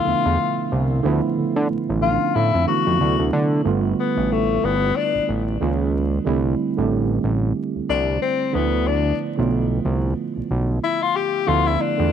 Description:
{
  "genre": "R&B, neo-soul",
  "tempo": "92 BPM",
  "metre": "4/4",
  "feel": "swing 58% on 16ths",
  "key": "D dorian",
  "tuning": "A4 = 442 Hz",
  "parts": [
    { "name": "warm tenor saxophone", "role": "melody", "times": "0.0-12.1 s", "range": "A3 to G4", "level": "-22 LUFS", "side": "left 8 dB", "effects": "tape echo" },
    { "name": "mellow tine electric piano", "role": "accompaniment", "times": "0.0-12.1 s", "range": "B2 to E5", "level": "-23 LUFS", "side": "right 7 dB", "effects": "medium stereo tremolo" },
    { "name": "fat analog bass", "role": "bass", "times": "0.1-12.1 s", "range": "G1 to D3", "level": "-21 LUFS", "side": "equal", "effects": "none" }
  ],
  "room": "light reverb, small room ambience",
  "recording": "1960s-style stereo with parts hard left and right, vinyl crackle",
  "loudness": "-18 LUFS",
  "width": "side -8 dB against mid",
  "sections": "0.0-3.6 A section; 3.6-12.1 B section",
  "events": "tenor saxophone solo 3.6-12.1",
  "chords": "0.0 Dm69; 3.0 D13; 3.6 G9; 5.6 C#6; 6.3 C6; 8.5 Dm69"
}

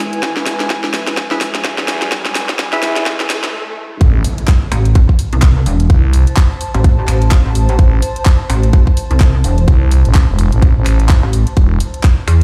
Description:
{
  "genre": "bass house",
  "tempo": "127 BPM",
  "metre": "4/4",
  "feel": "swing 58% on 16ths",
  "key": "A harmonic minor",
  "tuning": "A4 = 439 Hz",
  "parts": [
    { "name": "dark analog pad", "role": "sustained chords", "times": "0.0-3.5 s", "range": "G#3 to B4", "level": "-33 LUFS", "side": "equal", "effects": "chorus, sidechain pumping" },
    { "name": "percussive organ stab", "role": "stabs", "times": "0.0-3.5 s", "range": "E4 to E5", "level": "-25 LUFS", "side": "equal", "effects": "chorus, sidechain pumping, tape echo" },
    { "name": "riser, swell and impact", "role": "sound effects", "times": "0.2-5.9 s", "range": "none", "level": "-28 LUFS", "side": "equal", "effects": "none" },
    { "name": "granular cloud pad", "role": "texture", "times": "0.0-12.4 s", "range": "E4 to A5", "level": "-29 LUFS", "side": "equal", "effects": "built-in reverb, sidechain pumping" },
    { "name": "garage drum kit", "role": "drums", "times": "0.1-12.4 s", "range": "finger snaps, handclaps, hi-hat, snare drum", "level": "-23 LUFS", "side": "equal", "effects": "overdrive" },
    { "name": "growling FM bass", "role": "bass", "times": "0.2-11.8 s", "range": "E1 to E2", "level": "-16 LUFS", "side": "equal", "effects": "overdrive, sidechain pumping, high-pass filter" },
    { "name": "electronic kick drum", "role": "drums", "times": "0.2-12.2 s", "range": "none", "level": "-12 LUFS", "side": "equal", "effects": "overdrive, high-pass filter on kick" },
    { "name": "pulsing pluck wobble bass", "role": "bass", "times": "4.7-12.4 s", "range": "E1 to E2", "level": "-14 LUFS", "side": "equal", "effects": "chorus, overdrive, sidechain pumping" }
  ],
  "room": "little or no reverb",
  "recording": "played on a big sound system in a bare room, large studio reverb, high-pass filter",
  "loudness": "-13 LUFS",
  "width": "mono",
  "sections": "0.0-4.0 A section; 4.0-12.4 B section",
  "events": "build-up 0.0-4.0; drum fill 0.0-3.5; riser 0.2-3.5; filter sweep on synth stab 0.0-4.0; swell 3.1-4.0; stop 3.5-4.0; drop 4.0-12.4; impact 4.0-5.9",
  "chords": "0.0 E; 4.0 Am; 11.6 E"
}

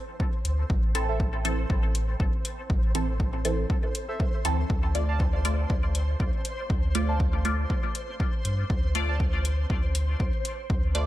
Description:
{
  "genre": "dub techno",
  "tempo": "120 BPM",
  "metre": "4/4",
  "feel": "swing 55% on 16ths",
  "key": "unclear",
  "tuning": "A4 = 440 Hz",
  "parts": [
    { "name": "flickering grainy texture", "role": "texture", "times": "0.0-11.1 s", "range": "C5", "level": "-39 LUFS", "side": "equal", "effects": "built-in reverb, sidechain pumping" },
    { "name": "electronic kick drum", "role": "drums", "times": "0.2-10.8 s", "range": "none", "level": "-28 LUFS", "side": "equal", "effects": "overdrive" },
    { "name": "warm sub bass", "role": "bass", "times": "0.4-11.1 s", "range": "A1 to G2", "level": "-27 LUFS", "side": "equal", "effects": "sidechain pumping" },
    { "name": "electronic hi-hat", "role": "drums", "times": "0.5-11.1 s", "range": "none", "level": "-33 LUFS", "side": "left 2 dB", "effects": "overdrive" },
    { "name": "filtered dub chord stab", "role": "stabs", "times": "0.9-11.1 s", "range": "E3 to D5", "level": "-32 LUFS", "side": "right 1 dB", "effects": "phaser, sidechain pumping, dub echo" },
    { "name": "warbly lo-fi synth keys", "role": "riff", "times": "1.1-9.2 s", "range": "A4 to A5", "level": "-37 LUFS", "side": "right 2 dB", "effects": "chorus, phaser, sidechain pumping, dub echo" }
  ],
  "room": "digital ambience",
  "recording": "none",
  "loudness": "-24 LUFS",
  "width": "side -14 dB against mid",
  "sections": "0.0-11.1 A section",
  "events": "none",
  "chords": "0.0 Am; 4.7 Dm"
}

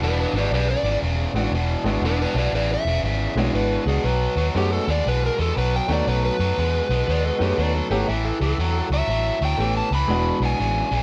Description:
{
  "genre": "electric blues shuffle",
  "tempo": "119 BPM",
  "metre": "4/4",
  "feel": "swing 64% on 8ths",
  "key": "E mixolydian",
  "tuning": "A4 = 440 Hz",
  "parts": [
    { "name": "overdriven slide guitar", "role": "melody", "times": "0.0-11.0 s", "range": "D4 to B5", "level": "-28 LUFS", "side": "equal", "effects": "none" },
    { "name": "biting overdriven guitar", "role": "riff", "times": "0.0-11.0 s", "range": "E2 to G#3", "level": "-29 LUFS", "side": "equal", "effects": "none" },
    { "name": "vintage muted fingered electric bass", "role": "bass", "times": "0.0-11.0 s", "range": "E1 to F#2", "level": "-26 LUFS", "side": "equal", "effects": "none" },
    { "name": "bright upright piano", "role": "accompaniment", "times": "1.3-10.8 s", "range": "G#3 to G4", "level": "-29 LUFS", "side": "equal", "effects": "none" },
    { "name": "overdriven slide guitar", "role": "second line", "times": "3.0-8.8 s", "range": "G4 to E5", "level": "-31 LUFS", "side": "equal", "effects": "none" }
  ],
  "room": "light reverb",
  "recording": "nothing above 10.7 kHz",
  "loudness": "-22 LUFS",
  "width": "mono",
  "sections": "0.0-11.0 A section",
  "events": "none",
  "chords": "0.0 E7; 4.0 B7; 8.1 A7; 10.1 E7"
}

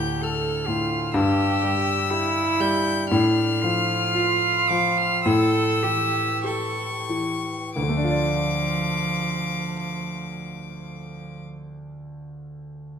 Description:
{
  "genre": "classical, slow romantic movement for piano trio",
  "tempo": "45-66 BPM",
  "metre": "4/4",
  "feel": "rubato",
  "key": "D minor",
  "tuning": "A4 = 440 Hz",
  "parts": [
    { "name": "warm violin", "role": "melody", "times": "0.0-11.4 s", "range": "C#6 to G6", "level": "-27 LUFS", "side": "left 6 dB", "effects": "none" },
    { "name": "rich cello", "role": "second line", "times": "0.0-11.4 s", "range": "F3 to A4", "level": "-26 LUFS", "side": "right 5 dB", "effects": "none" },
    { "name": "warm concert grand piano", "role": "accompaniment", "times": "0.0-13.0 s", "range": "D2 to D5", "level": "-24 LUFS", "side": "left 1 dB", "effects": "none" }
  ],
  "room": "moderate recital hall reverb, RT60 1.7 s",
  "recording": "none",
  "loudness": "-20 LUFS",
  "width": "side -7 dB against mid",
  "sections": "0.0-7.8 A section; 7.8-12.8 B section",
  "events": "slowing down 0.0-7.8",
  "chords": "0.0 Dm; 1.2 N.C.; 3.1 Dm/A; 5.3 A7; 7.8 Dm"
}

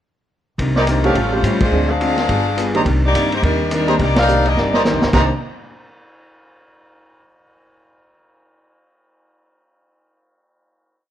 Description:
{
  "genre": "jazz, big band swing",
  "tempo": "211 BPM",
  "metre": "4/4",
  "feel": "swing 60% on 8ths",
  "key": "C minor",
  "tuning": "A4 = 441 Hz",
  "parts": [
    { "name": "archtop guitar, miked and amplified", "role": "accompaniment", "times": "0.6-5.3 s", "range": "A2 to Ab4", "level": "-24 LUFS", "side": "left 2 dB", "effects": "none" },
    { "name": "upright bass", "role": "bass", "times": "0.6-5.3 s", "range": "G1 to A2", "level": "-20 LUFS", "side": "equal", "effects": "none" },
    { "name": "vintage drum kit", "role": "drums", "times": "0.6-5.2 s", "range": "crash cymbal, hi-hat, kick drum, ride cymbal, snare drum", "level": "-22 LUFS", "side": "equal", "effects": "none" },
    { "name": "edgy saxophone section", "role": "melody", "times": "0.8-5.3 s", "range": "G3 to F5", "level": "-19 LUFS", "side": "left 2 dB", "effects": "none" },
    { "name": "clear trumpet section", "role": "stabs", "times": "0.8-5.2 s", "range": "Eb4 to Bb5", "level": "-22 LUFS", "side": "right 1 dB", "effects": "none" },
    { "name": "warm baby grand piano", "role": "accompaniment", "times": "1.0-5.3 s", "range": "Eb3 to Bb4", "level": "-22 LUFS", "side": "right 2 dB", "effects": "none" }
  ],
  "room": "light reverb",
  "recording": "worn, warbling old tape, cassette tape, warbly pitch drift",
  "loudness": "-14 LUFS",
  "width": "side -11 dB against mid",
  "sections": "0.6-5.1 A section; 5.1-6.3 final chord",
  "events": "band accent 1.6, 4.1; drum fill 4.6-5.1",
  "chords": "0.6 Cm9; 1.2 A7alt; 1.7 Dm7b5; 2.3 G7b9; 2.9 Cm9"
}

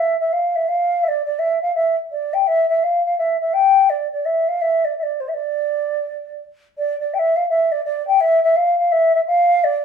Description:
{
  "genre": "celtic folk",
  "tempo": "168 BPM",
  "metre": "4/4",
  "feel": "swing 63% on 8ths",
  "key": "unclear",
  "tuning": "A4 = 439 Hz",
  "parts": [
    { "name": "mellow hollow wooden flute", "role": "solo", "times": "0.0-9.8 s", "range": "C5 to G5", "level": "-16 LUFS", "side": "equal", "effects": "none" }
  ],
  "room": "wet studio reverb, RT60 0.6 s",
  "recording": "band playing live in one room",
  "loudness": "-16 LUFS",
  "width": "side -7 dB against mid",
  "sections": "0.0-6.8 A section; 6.8-9.8 A section",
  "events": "none",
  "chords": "none"
}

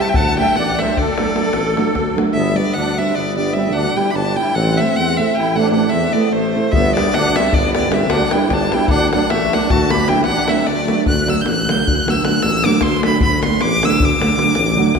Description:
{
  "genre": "balkan folk, Balkan wedding band",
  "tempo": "304 BPM (eighths)",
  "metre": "11/8",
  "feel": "straight",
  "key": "D mixolydian",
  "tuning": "A4 = 443 Hz",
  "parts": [
    { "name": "rich violin", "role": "melody", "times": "0.0-15.0 s", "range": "C5 to G6", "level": "-19 LUFS", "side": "left 1 dB", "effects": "none" },
    { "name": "musette accordion", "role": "second line", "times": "0.0-11.1 s", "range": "A3 to F#5", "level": "-23 LUFS", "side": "equal", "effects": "none" },
    { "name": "nylon-string guitar", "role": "accompaniment", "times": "0.0-14.9 s", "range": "D3 to A4", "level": "-19 LUFS", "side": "right 3 dB", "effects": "none" },
    { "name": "davul", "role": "percussion", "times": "0.1-2.3, 6.7-15.0 s", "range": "none", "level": "-20 LUFS", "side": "left 2 dB", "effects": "none" },
    { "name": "mellow tuba", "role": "bass", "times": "0.2-15.0 s", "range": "G1 to E2", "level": "-22 LUFS", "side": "equal", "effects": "none" }
  ],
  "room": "wet concert hall reverb, RT60 2.6 s",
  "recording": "minimal, uncompressed stereo recording",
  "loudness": "-14 LUFS",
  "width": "side -5 dB against mid",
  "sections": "0.0-2.4 A section; 2.4-11.1 B section; 11.1-15.0 A section",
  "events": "speeding up 0.0-15.0",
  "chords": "0.1 D; 2.4 G; 4.5 Am; 6.7 G; 8.9 D"
}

